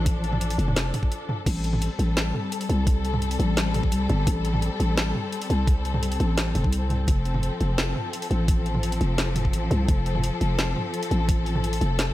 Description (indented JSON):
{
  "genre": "half-time drum and bass",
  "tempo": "171 BPM",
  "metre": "4/4",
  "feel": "half-time",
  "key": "A minor",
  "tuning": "A4 = 440 Hz",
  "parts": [
    { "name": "rich studio string section", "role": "sustained chords", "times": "0.0-12.1 s", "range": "F3 to A4", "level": "-29 LUFS", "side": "left 3 dB", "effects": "vintage 12-bit sampler grit, sidechain pumping" },
    { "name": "growling 808-style bass", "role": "bass", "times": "0.0-12.1 s", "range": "E1 to C2", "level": "-24 LUFS", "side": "equal", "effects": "none" },
    { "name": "drum and bass drum kit", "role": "drums", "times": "0.1-12.1 s", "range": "crash cymbal, hi-hat, snare drum, toms", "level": "-28 LUFS", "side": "right 1 dB", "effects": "overdrive, small room reverb" },
    { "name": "electronic kick drum", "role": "drums", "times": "0.1-11.4 s", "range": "none", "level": "-23 LUFS", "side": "equal", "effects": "small room reverb" }
  ],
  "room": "digital ambience",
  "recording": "none",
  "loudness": "-22 LUFS",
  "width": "side -15 dB against mid",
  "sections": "0.0-1.5 A section; 1.5-12.1 A section",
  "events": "drop 0.0-1.5, 1.5-12.1",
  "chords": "0.0 F; 1.5 Am7; 7.1 F",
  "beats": "| 0.06 0.41 0.76 1.11 | 1.46 1.81 2.17 2.52 | 2.87 3.22 3.57 3.92 | 4.27 4.62 4.97 5.32 | 5.67 6.03 6.38 6.73 | 7.08 7.43 7.78 8.13 | 8.48 8.83 9.18 9.54 | 9.88 10.24 10.59 10.94 | 11.29 11.64 11.99"
}